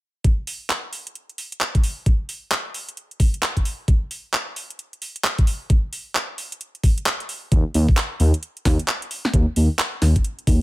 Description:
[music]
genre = UK garage, two-step garage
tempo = 132 BPM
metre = 4/4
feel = swing 62% on 16ths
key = unclear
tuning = A4 = 440 Hz
[part]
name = electronic kick drum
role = drums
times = 0.2-10.6 s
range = none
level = -17 LUFS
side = equal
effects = small room ambience
[part]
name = garage drum kit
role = drums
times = 0.2-10.6 s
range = handclaps, hi-hat, snare drum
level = -25 LUFS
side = equal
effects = small room ambience
[part]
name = dark detuned saw bass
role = bass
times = 7.5-10.6 s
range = D#2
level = -17 LUFS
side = equal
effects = none
[sound]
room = digital ambience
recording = none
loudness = -19 LUFS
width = side -19 dB against mid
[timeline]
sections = 0.2-7.5 A section; 7.5-10.6 B section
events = break 7.1-7.5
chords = none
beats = | 0.24 0.70 1.15 1.61 | 2.06 2.52 2.97 3.43 | 3.88 4.33 4.79 5.24 | 5.70 6.15 6.61 7.06 | 7.52 7.97 8.43 8.88 | 9.34 9.79 10.24

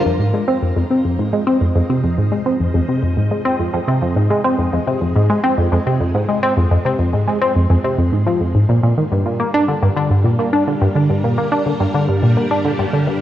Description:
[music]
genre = ambient, sequencer-driven space music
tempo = 106 BPM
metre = 4/4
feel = straight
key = F dorian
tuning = A4 = 441 Hz
[part]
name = string machine, full ensemble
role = sustained chords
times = 0.0-13.2 s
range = G3 to F5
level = -27 LUFS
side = right 1 dB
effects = ensemble chorus, shimmer reverb
[part]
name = tight sequenced synth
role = riff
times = 0.1-13.2 s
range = F2 to D4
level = -14 LUFS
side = equal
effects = chorus, ping-pong delay
[sound]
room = wet scoring stage reverb, RT60 2.1 s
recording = worn, warbling old tape, cassette tape, warbly pitch drift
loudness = -14 LUFS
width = side -12 dB against mid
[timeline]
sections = 0.1-13.2 A section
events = fade-in on string machine 0.1-13.2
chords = 0.1 Fm7; 9.1 Gm7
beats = | 0.06 0.62 1.19 1.75 | 2.32 2.89 3.45 4.02 | 4.58 5.15 5.72 6.28 | 6.85 7.42 7.98 8.55 | 9.11 9.68 10.25 10.81 | 11.38 11.94 12.51 13.08

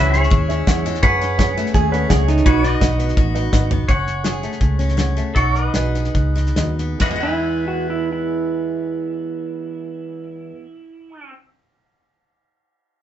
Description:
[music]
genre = honky-tonk and classic country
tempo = 133-168 BPM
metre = 4/4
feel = straight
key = E major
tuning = A4 = 438 Hz
[part]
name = picked steel-string acoustic guitar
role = accompaniment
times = 0.0-10.7 s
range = E2 to G#4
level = -25 LUFS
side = left 2 dB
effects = none
[part]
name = warm upright piano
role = accompaniment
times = 0.0-10.2 s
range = E4 to F#5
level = -29 LUFS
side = right 4 dB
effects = none
[part]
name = pedal steel guitar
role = sustained chords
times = 0.0-10.2 s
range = G#4 to G#5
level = -24 LUFS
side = left 1 dB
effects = none
[part]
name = vintage muted fingered electric bass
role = bass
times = 0.0-10.2 s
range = F#1 to F#2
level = -20 LUFS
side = equal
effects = none
[part]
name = damped 70s drum kit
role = drums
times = 0.1-7.1 s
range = hi-hat, kick drum, ride cymbal, snare drum, toms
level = -20 LUFS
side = equal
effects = none
[part]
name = pedal steel guitar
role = second line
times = 1.0-2.6, 7.2-11.3 s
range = D#4 to B4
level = -22 LUFS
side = right 5 dB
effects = none
[sound]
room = wet small room reverb, RT60 0.5 s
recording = band playing live in one room, nothing above 7.9 kHz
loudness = -16 LUFS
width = side -11 dB against mid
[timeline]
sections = 0.0-3.9 A section; 3.9-7.0 B section; 7.0-10.6 C section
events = drum fill 3.5-3.9; slowing down 3.9-7.0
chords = 0.0 C#m; 1.0 F#madd9; 2.5 B; 3.9 F#madd9; 5.4 B; 7.0 E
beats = 0.31 0.67 | 1.02 1.38 1.74 2.10 | 2.45 2.81 3.17 3.52 | 3.88 4.24 4.61 4.97 | 5.36 5.75 6.15 6.57 | 7.01 7.46 7.91 8.36 | 8.81 9.26 9.71 10.15

